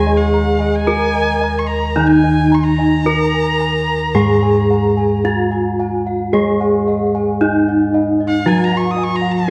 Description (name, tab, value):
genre	Javanese gamelan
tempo	55 BPM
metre	4/4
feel	straight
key	unclear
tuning	A4 = 439 Hz
part	gamelan-type bronze metallophone	melody	0.0-9.5 s	Eb4 to Bb4	-19 LUFS	equal	none
part	clear erhu	second line	0.0-9.5 s	F5+50c to Eb6	-24 LUFS	equal	slapback echo
part	gamelan-type bronze metallophone	accompaniment	0.0-9.5 s	Eb3 to Ab3	-22 LUFS	equal	none
part	gamelan-type bossed gongs	arpeggios	0.0-9.5 s	Eb5 to Bb5	-29 LUFS	equal	none
part	gamelan-type bronze metallophone	arpeggios	0.0-9.5 s	Eb5 to Bb5	-30 LUFS	equal	none
part	gamelan-type bossed gongs	bass	0.0-9.5 s	Eb2 to Ab4	-23 LUFS	equal	none
room	wet recital hall reverb, RT60 1.6 s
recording	none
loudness	-15 LUFS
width	mono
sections	0.0-9.5 A section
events	none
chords	none